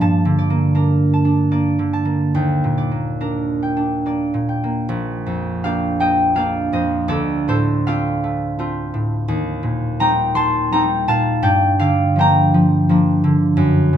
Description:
classical, solo harp piece; 69-88 BPM; 3/4; rubato; A4 = 438 Hz
concert harp; solo; 0.0-14.0 s; Bb1 to C6; -15 LUFS; equal
light reverb; close, detailed microphones; -16 LUFS; side -9 dB against mid
0.0-4.9 A section; 4.9-14.0 B section
0.0 Gmadd9; 2.4 Ebmaj7; 4.9 Bb6; 7.1 Dm7; 9.3 Eb6; 11.4 Gm7

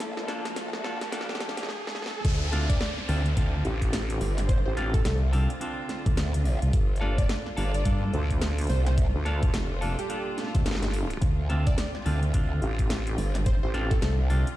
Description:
glitch hop; 107 BPM; 4/4; swing 60% on 16ths; D minor; A4 = 439 Hz
clear symphonic string section; sustained chords; 0.0-14.6 s; Bb2 to A4; -39 LUFS; equal; sidechain pumping
clean electric guitar; stabs; 0.0-14.5 s; Bb3 to A4; -36 LUFS; equal; sidechain pumping, ping-pong delay
growl bass; bass; 0.0-14.4 s; F1 to G2; -26 LUFS; equal; chorus, tube saturation, high-pass filter
drum and bass drum kit; drums; 0.0-14.6 s; crash cymbal, hi-hat, snare drum; -35 LUFS; equal
riser and downlifter; sound effects; 0.0-6.7 s; -37 LUFS; right 1 dB
deep dark ambient pad; texture; 0.0-1.7 s; Bb3 to A5; -45 LUFS; left 1 dB
electronic kick drum; drums; 2.2-14.0 s; -25 LUFS; equal
plucky unison lead; melody; 2.7-14.1 s; G4 to D5; -38 LUFS; right 2 dB; ping-pong delay
vowel-sweep wobble bass; bass; 3.7-14.0 s; G1 to D2; -28 LUFS; equal; chorus
little or no reverb; played on a big sound system in a bare room, stone room reverb, high-pass filter; -24 LUFS; side -15 dB against mid
0.0-2.2 A section; 2.2-14.6 B section
build-up 0.0-2.2; drum fill 0.0-1.7, 1.7-2.2; riser 0.0-2.2; drop 2.2-14.6
0.0 Gm9; 2.2 Dm7; 6.7 Gm9; 11.2 Dm7

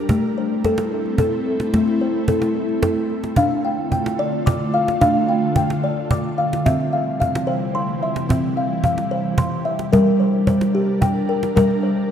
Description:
world meditative, meditative tuned percussion; 73 BPM (dotted quarters); 6/8; straight; D minor; A4 = 441 Hz
ethereal airy pad; sustained chords; 0.0-12.1 s; C3 to Bb4; -23 LUFS; equal; ensemble chorus, built-in reverb
kalimba; arpeggios; 0.0-12.1 s; G3 to D6; -19 LUFS; left 1 dB; diffuse ambient delay
cajon; percussion; 0.1-11.8 s; -23 LUFS; right 2 dB
wet lush hall reverb, RT60 2.8 s; dark, warm production; -17 LUFS; side -8 dB against mid
0.0-3.4 A section; 3.4-12.1 B section
0.1 Am; 3.4 Dm; 6.7 C; 9.9 Gm

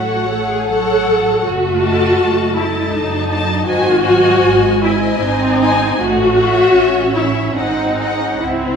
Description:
classical, slow romantic movement for string orchestra; 66-84 BPM; 3/4; rubato; A4 = 440 Hz
rich symphonic violin section; melody; 0.0-8.4 s; E5 to A5; -22 LUFS; left 3 dB
warm symphonic violin section; second line; 0.0-8.4 s; G#4 to D#5; -24 LUFS; left 4 dB
dark studio viola section; accompaniment; 0.0-8.8 s; B#3 to A4; -15 LUFS; left 1 dB
warm symphonic cello section; bass; 0.0-8.8 s; D#3 to E4; -21 LUFS; right 4 dB
warm symphonic double bass section; bass; 0.0-8.8 s; F#1 to C#2; -23 LUFS; right 4 dB
wet scoring stage reverb, RT60 1.6 s; minimal, uncompressed stereo recording; -12 LUFS; side -6 dB against mid
0.0-8.8 A section
0.0 F#m/A; 1.5 D#dim/F#; 3.7 G#; 6.0 A; 7.6 G#7

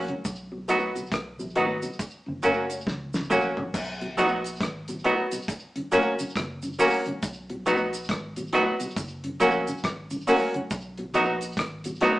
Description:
roots reggae; 69 BPM; 4/4; swing 62% on 16ths; B major; A4 = 440 Hz
clean electric guitar; accompaniment; 0.0-12.2 s; F#3 to F#4; -25 LUFS; right 2 dB; tremolo, slapback echo
warm upright piano; stabs; 0.0-12.2 s; F#4 to F#5; -26 LUFS; left 1 dB
vintage muted fingered electric bass; bass; 0.0-12.0 s; F#1 to C#2; -39 LUFS; equal
mellow tonewheel organ; accompaniment; 0.1-12.1 s; F#2 to F#4; -32 LUFS; left 1 dB; slow rotary speaker
damped 70s drum kit; drums; 0.1-12.2 s; crash cymbal, hi-hat, kick drum, rim click, snare drum, toms; -32 LUFS; equal
cabasa; percussion; 0.3-12.0 s; -42 LUFS; right 2 dB; slapback echo
wet studio reverb, RT60 0.8 s; band playing live in one room, small speaker sound; -24 LUFS; side -17 dB against mid
0.0-3.7 A section; 3.7-12.2 B section
drum fill 2.9-3.7
0.2 B; 2.0 F#; 3.7 B; 5.5 F#; 7.2 B; 9.0 F#; 10.7 B

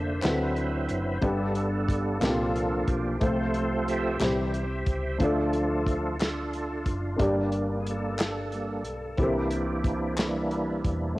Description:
slow gospel; 60 BPM (dotted quarters); 6/8; straight; A4 = 440 Hz
warm baby grand piano; accompaniment; 0.0-11.2 s; G2 to D5; -30 LUFS; left 1 dB; cassette tape
bright tonewheel organ; sustained chords; 0.0-11.2 s; D3 to E5; -29 LUFS; right 1 dB; fast rotary speaker, chorus vibrato, cassette tape
hollow-body short-scale fingered electric bass; bass; 0.0-11.2 s; E1 to D2; -33 LUFS; equal
warm soul drum kit; drums; 0.2-11.0 s; hi-hat, kick drum, snare drum; -30 LUFS; equal; cassette tape
group handclap; percussion; 0.2-10.5 s; -38 LUFS; left 2 dB
light reverb, studio ambience; home recording on cassette; -25 LUFS; side -18 dB against mid
0.0-11.2 A section
tonewheel organ solo 0.0-11.2
0.2 D13; 1.2 G; 2.2 C9sus4; 3.2 F/C; 4.2 C; 5.2 Dm; 7.2 Gm; 9.2 C7

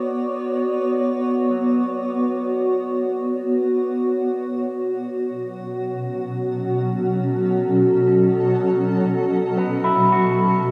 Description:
ambient; free time; B minor; A4 = 440 Hz
granular cloud pad; sustained chords; 0.0-10.7 s; B2 to D5; -21 LUFS; equal; built-in reverb
electric guitar with an envelope filter; arpeggios; 0.0-10.7 s; F#3 to F#4; -24 LUFS; equal; subtle chorus
wet lush hall reverb, RT60 3.1 s; -21 LUFS; mono
0.0-10.7 A section
fade-in on clean electric guitar 0.0-10.7
0.0 Bmadd9; 4.2 F#m7/B

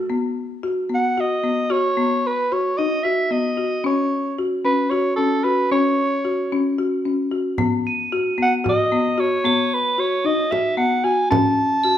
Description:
contemporary instrumental, chamber music in an uneven meter; 112 BPM; 7/4; straight; B mixolydian; A4 = 439 Hz
folk marimba with medium mallets; arpeggios; 0.0-12.0 s; B3 to F#4; -21 LUFS; left 2 dB
growling soprano saxophone; melody; 0.9-12.0 s; A4 to A5; -20 LUFS; right 2 dB
frame drum; percussion; 7.6-11.6 s; -26 LUFS; right 4 dB
crotales; texture; 7.9-12.0 s; D#7 to B7; -27 LUFS; right 3 dB
wet recital hall reverb, RT60 1.4 s; minimal, uncompressed stereo recording; -18 LUFS; side -10 dB against mid
0.1-12.0 A section
0.1 B; 3.9 F#5; 7.6 B7; 11.3 F#m

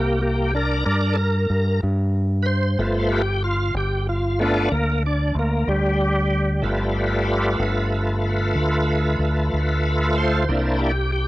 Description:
slow blues; 62 BPM (dotted quarters); 12/8; straight; G mixolydian; A4 = 438 Hz
bright tonewheel organ; sustained chords; 0.0-11.3 s; G3 to C5; -22 LUFS; equal; chorus vibrato, slow rotary speaker, cassette tape
deep dub fingered electric bass; bass; 0.0-11.3 s; G1 to G2; -22 LUFS; equal
digital ambience; home recording on cassette; -19 LUFS; side -17 dB against mid
0.0-11.3 A section
tonewheel organ solo 0.0-11.3
0.0 C7sus2; 2.8 G9; 10.5 C9

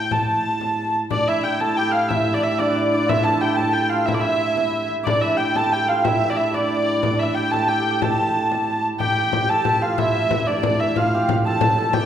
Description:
medieval dance; 122 BPM (dotted quarters); 6/8; straight; A4 = 440 Hz
dark hurdy-gurdy; melody; 0.0-12.1 s; D5 to A5; -20 LUFS; equal
warm viola da gamba; drone; 0.0-12.1 s; A2; -27 LUFS; right 1 dB
frame drum; percussion; 0.1-12.1 s; -26 LUFS; left 3 dB
hammered dulcimer; second line; 1.1-12.1 s; D4 to A4; -24 LUFS; right 3 dB
wet recital hall reverb, RT60 1.5 s; recorded in a church or concert hall; -18 LUFS; side -9 dB against mid
0.0-1.1 A section; 1.1-9.0 A section; 9.0-12.1 B section

